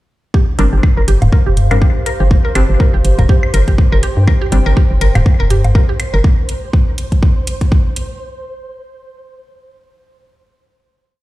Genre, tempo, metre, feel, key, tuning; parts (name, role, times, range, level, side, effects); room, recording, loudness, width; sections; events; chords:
minimal techno; 122 BPM; 4/4; swing 57% on 16ths; G minor; A4 = 440 Hz
mallet-like synth pluck; riff; 0.3-6.2 s; G4 to Bb4; -22 LUFS; equal; chorus, phaser, sidechain pumping, dub echo
electronic kick drum; drums; 0.3-7.8 s; -11 LUFS; equal
flickering grainy texture; texture; 0.7-8.2 s; C5; -30 LUFS; right 2 dB; built-in reverb, sidechain pumping
warbly tape-like pad; texture; 1.2-6.2 s; G4 to G5; -28 LUFS; right 1 dB; chorus, built-in reverb, sidechain pumping
wavetable chord stab; stabs; 0.6-4.6 s; G3 to D4; -22 LUFS; left 2 dB; ping-pong delay
hollow knocking FM bass; bass; 0.6-6.2 s; D1 to G2; -12 LUFS; equal; sidechain pumping
electronic hi-hat; drums; 0.6-8.1 s; -26 LUFS; right 2 dB
electronic woodblock and toms; percussion; 0.8-6.1 s; -17 LUFS; left 1 dB; ping-pong delay
little or no reverb; played on a big sound system in a bare room, stone room reverb; -10 LUFS; side -17 dB against mid
0.3-8.2 groove
filter sweep on synth arpeggio sound 0.3-6.2
0.3 Gsus4